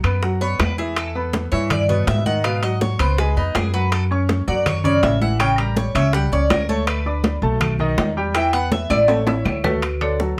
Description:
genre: latin, salsa.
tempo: 162 BPM.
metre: 4/4.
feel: straight.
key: D major.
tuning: A4 = 443 Hz.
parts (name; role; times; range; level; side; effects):
clear grand piano; accompaniment; 0.0-10.4 s; B2 to E6; -26 LUFS; equal; none.
upright bass; bass; 0.0-10.3 s; A1 to G#2; -24 LUFS; equal; none.
bongos; percussion; 0.0-10.4 s; none; -29 LUFS; equal; none.
claves; percussion; 0.0-10.0 s; none; -34 LUFS; equal; none.
congas; percussion; 0.0-10.4 s; none; -29 LUFS; equal; none.
timbales; percussion; 0.0-10.4 s; none; -29 LUFS; equal; none.
Cuban tres; melody; 0.4-9.7 s; Eb4 to G5; -25 LUFS; equal; none.
marimba with hard mallets; melody; 9.6-10.4 s; F#4 to C#5; -26 LUFS; equal; none.
room: light reverb.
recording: none.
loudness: -19 LUFS.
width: mono.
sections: 0.0-9.8 A section.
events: Cuban tres solo 0.0-9.8; drum fill 8.7-9.8.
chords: 0.0 B5; 1.0 Emadd11; 2.4 G#m7; 3.2 C#7; 3.9 F#m7; 5.4 A7; 6.9 D5; 7.6 B7; 8.3 E5; 9.1 A6; 9.8 D6.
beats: 0.23 0.60 | 0.97 1.34 1.71 2.08 | 2.44 2.81 3.18 3.55 | 3.92 4.29 4.66 5.03 | 5.40 5.77 6.14 6.50 | 6.87 7.24 7.61 7.98 | 8.35 8.72 9.09 9.46 | 9.83 10.20.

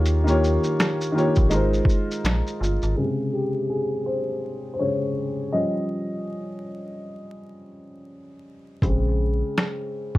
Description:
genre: lo-fi hip hop.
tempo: 82 BPM.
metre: 4/4.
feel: swing 60% on 16ths.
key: unclear.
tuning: A4 = 441 Hz.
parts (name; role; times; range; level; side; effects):
warm upright piano; accompaniment; 0.0-10.2 s; C3 to F5; -24 LUFS; equal; low-pass filter, plate reverb.
metallic FM bass; bass; 0.0-2.9, 8.8-10.2 s; G1 to Eb2; -22 LUFS; equal; none.
lo-fi sampler-style drum kit; drums; 0.1-3.0, 8.8-10.2 s; hi-hat, kick drum, shaker, snare drum; -22 LUFS; equal; none.
room: light reverb.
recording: vinyl crackle.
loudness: -21 LUFS.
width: side -17 dB against mid.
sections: 0.0-3.0 A section; 3.0-10.2 B section.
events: upright piano solo 3.0-10.2.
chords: 0.0 Eb7; 1.5 Ab6; 3.0 Abadd11/C; 5.5 Eb7; 8.8 Bbm7.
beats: | 0.04 0.77 1.50 2.23 | 2.97 3.70 4.43 5.16 | 5.89 6.63 7.36 8.09 | 8.82 9.55.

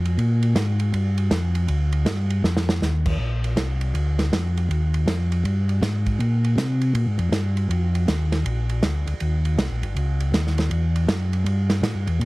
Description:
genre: soul jazz organ trio.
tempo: 160 BPM.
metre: 4/4.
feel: swing 64% on 8ths.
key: Bb mixolydian.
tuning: A4 = 439 Hz.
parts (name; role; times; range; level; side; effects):
mellow tonewheel organ; bass; 0.0-12.2 s; G1 to C3; -21 LUFS; equal; slow rotary speaker.
warm soul drum kit; drums; 0.1-12.2 s; crash cymbal, hi-hat, kick drum, ride cymbal, snare drum; -26 LUFS; right 1 dB; none.
room: little or no reverb.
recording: heavily compressed radio sound, multiband compression.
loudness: -20 LUFS.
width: side -22 dB against mid.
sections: 0.0-3.2 A section; 3.2-12.2 A section.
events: drum fill 2.4-2.8.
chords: none.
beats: | 0.19 0.56 0.94 1.32 | 1.69 2.07 2.44 2.82 | 3.20 3.57 3.95 4.33 | 4.70 5.08 5.45 5.83 | 6.20 6.58 6.96 7.33 | 7.71 8.08 8.46 8.83 | 9.21 9.58 9.96 10.34 | 10.71 11.09 11.46 11.84 | 12.21.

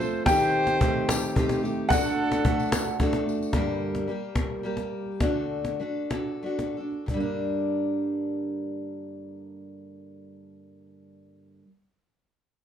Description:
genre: acoustic folk duo or small band.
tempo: 87-110 BPM.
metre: 3/4.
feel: straight.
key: G minor.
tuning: A4 = 440 Hz.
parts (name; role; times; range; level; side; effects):
mellow trumpet; second line; 0.0-3.2 s; A4 to C5; -33 LUFS; right 4 dB; none.
picked steel-string acoustic guitar; accompaniment; 0.0-11.8 s; G2 to Bb4; -29 LUFS; left 1 dB; none.
felt-muted upright piano; arpeggios; 0.0-3.6 s; Eb3 to G4; -30 LUFS; right 3 dB; none.
tambourine; percussion; 0.0-3.5 s; none; -38 LUFS; left 5 dB; none.
clear upright piano; melody; 0.3-2.9 s; F#5 to G5; -26 LUFS; equal; none.
cajon; percussion; 0.3-7.4 s; none; -28 LUFS; left 1 dB; none.
room: light reverb.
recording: dark, warm production.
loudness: -24 LUFS.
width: side -9 dB against mid.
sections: 0.0-3.5 A section; 3.5-7.1 B section; 7.1-11.2 C section.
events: slowing down 3.5-7.1.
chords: 0.3 Am7b5; 1.9 D; 3.5 Gm; 5.2 D; 7.1 Gm.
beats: | 0.27 0.81 1.35 | 1.90 2.44 2.99 | 3.53 4.08 4.64 | 5.21 5.81 6.44 | 7.11 7.79 8.48 | 9.17 9.86 10.54.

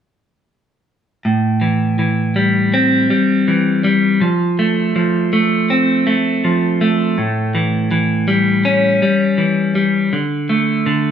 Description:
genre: rock.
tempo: 81 BPM.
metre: 4/4.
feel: straight.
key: A minor.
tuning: A4 = 440 Hz.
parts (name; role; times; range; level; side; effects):
clean electric guitar; arpeggios; 1.2-11.1 s; A2 to C#4; -13 LUFS; equal; none.
room: wet studio reverb, RT60 0.8 s.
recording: band playing live in one room.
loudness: -13 LUFS.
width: side -8 dB against mid.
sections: 1.3-11.1 A section.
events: none.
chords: 1.3 Am7; 4.2 F; 7.2 A7; 10.1 D5.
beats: | 1.25 1.99 2.73 3.47 | 4.21 4.95 5.69 6.43 | 7.17 7.91 8.65 9.38 | 10.12 10.86.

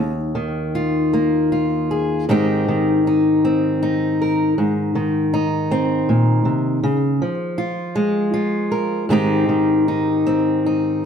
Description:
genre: folk, solo fingerstyle acoustic guitar.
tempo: 79 BPM.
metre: 3/4.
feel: rubato.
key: Ab major.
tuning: A4 = 440 Hz.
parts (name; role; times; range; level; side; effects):
fingerpicked steel-string acoustic guitar; solo; 0.0-11.1 s; Eb2 to Bb4; -16 LUFS; equal; slapback echo.
room: light reverb.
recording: close, detailed microphones.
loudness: -16 LUFS.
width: side -7 dB against mid.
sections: 0.0-11.1 A section.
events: none.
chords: 0.0 Ebsus2; 2.3 Abmaj7; 6.8 Db; 9.1 Abmaj7.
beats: 0.73 1.51 | 2.28 3.05 3.81 | 4.57 5.33 6.08 | 6.83 7.58 8.33 | 9.09 9.86 10.64.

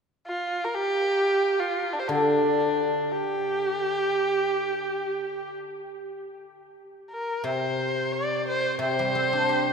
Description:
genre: chinese traditional, Chinese chamber ensemble.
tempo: free time.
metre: none.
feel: none.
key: G yu mode.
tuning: A4 = 441 Hz.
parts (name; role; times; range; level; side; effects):
rich erhu; melody; 0.3-9.7 s; D4 to D5; -25 LUFS; right 1 dB; none.
guzheng; accompaniment; 2.1-9.7 s; C3 to G4; -27 LUFS; left 2 dB; none.
room: wet cathedral reverb, RT60 5.3 s.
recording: recorded in a church or concert hall.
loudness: -23 LUFS.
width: side -6 dB against mid.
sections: 0.0-6.1 A section; 6.1-9.7 B section.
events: none.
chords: none.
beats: free time.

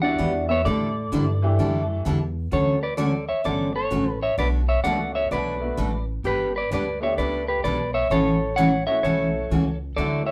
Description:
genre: country, western swing.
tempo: 129 BPM.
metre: 4/4.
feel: swing 65% on 8ths.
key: D major.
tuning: A4 = 438 Hz.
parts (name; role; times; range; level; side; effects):
clean lap steel guitar; melody; 0.0-10.3 s; G4 to F#5; -27 LUFS; equal; none.
hollow-body jazz guitar; second line; 0.0-2.0 s; A3 to D4; -31 LUFS; equal; none.
clear upright piano; accompaniment; 0.0-2.0, 4.8-10.3 s; E3 to G4; -33 LUFS; equal; none.
upright bass; bass; 0.0-10.3 s; G1 to A2; -30 LUFS; equal; none.
picked steel-string acoustic guitar; accompaniment; 0.2-10.2 s; B2 to A4; -27 LUFS; equal; none.
room: wet studio ambience, RT60 0.5 s.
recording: band playing live in one room.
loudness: -23 LUFS.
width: mono.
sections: 0.0-2.5 A section; 2.5-10.3 B section.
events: none.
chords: 0.0 Em9; 0.7 A7sus4; 2.5 Dmaj7; 4.4 Bm7; 6.2 Gadd9; 8.1 A6.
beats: 0.19 | 0.66 1.12 1.59 2.05 | 2.52 2.99 3.45 3.92 | 4.38 4.85 5.32 5.78 | 6.25 6.71 7.18 7.65 | 8.11 8.58 9.04 9.51 | 9.97.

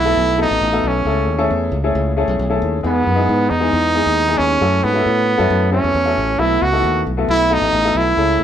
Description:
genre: uptempo 1960s-style soul.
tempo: 135 BPM.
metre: 4/4.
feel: straight.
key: unclear.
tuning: A4 = 441 Hz.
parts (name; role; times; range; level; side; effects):
clear trumpet; melody; 0.0-8.4 s; B3 to F#4; -16 LUFS; right 2 dB; none.
modern bright fingered electric bass; bass; 0.0-8.4 s; A1 to A2; -20 LUFS; equal; none.
clear grand piano; accompaniment; 0.1-8.4 s; G#3 to A4; -20 LUFS; left 4 dB; none.
room: moderate studio reverb, RT60 0.5 s.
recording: band playing live in one room.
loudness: -14 LUFS.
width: side -9 dB against mid.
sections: 0.0-8.4 A section.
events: none.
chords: 0.0 B7sus4; 1.1 Amaj7/C#; 2.8 Emaj7; 4.6 F#m7; 6.4 B7sus4.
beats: 0.17 0.62 | 1.06 1.51 1.95 2.40 | 2.84 3.29 3.73 4.17 | 4.62 5.07 5.51 5.96 | 6.40 6.84 7.29 7.74 | 8.18.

